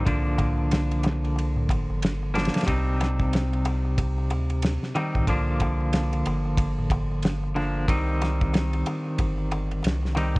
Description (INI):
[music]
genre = trip hop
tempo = 92 BPM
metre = 4/4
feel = swing 60% on 16ths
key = C minor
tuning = A4 = 440 Hz
[part]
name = clean electric guitar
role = accompaniment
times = 0.0-10.4 s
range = C3 to Eb4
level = -27 LUFS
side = equal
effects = tremolo, tape echo
[part]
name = soft dub sub bass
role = bass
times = 0.0-10.4 s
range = G1 to D2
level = -27 LUFS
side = equal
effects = none
[part]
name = damped 70s drum kit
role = drums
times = 0.1-10.4 s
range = kick drum, ride cymbal, snare drum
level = -26 LUFS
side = equal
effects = vintage 12-bit sampler grit, small room ambience
[part]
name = darbuka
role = percussion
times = 0.1-10.4 s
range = none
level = -35 LUFS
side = left 1 dB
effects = none
[sound]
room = small room ambience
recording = worn, warbling old tape, cassette tape, warbly pitch drift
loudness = -22 LUFS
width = side -24 dB against mid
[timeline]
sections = 0.0-10.4 A section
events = none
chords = 0.1 Bb/C; 2.7 Cm; 5.3 Bb; 7.9 Cm